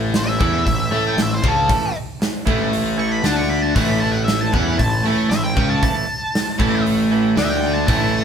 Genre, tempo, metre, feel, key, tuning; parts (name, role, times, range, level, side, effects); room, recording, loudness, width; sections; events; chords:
quiet-loud alternative rock; 116 BPM; 4/4; straight; A major; A4 = 440 Hz
crunchy overdriven guitar; riff; 0.0-8.2 s; A2 to A4; -22 LUFS; left 6 dB
crunchy overdriven guitar; riff; 0.0-8.2 s; A2 to A4; -23 LUFS; right 7 dB
fuzz picked electric bass; bass; 0.0-8.2 s; A1 to A2; -24 LUFS; equal; overdrive
semi-hollow electric guitar; arpeggios; 0.1-8.2 s; E3 to E4; -27 LUFS; right 7 dB
big rock drum kit; drums; 0.1-8.0 s; hi-hat, kick drum, snare drum; -22 LUFS; equal
octave-fuzz lead guitar; melody; 0.2-8.2 s; A4 to C#6; -22 LUFS; equal; distortion
moderate studio reverb, RT60 1.0 s; band playing live in one room; -16 LUFS; side -7 dB against mid
0.0-8.2 A section
lead electric guitar solo 0.0-8.2
0.0 A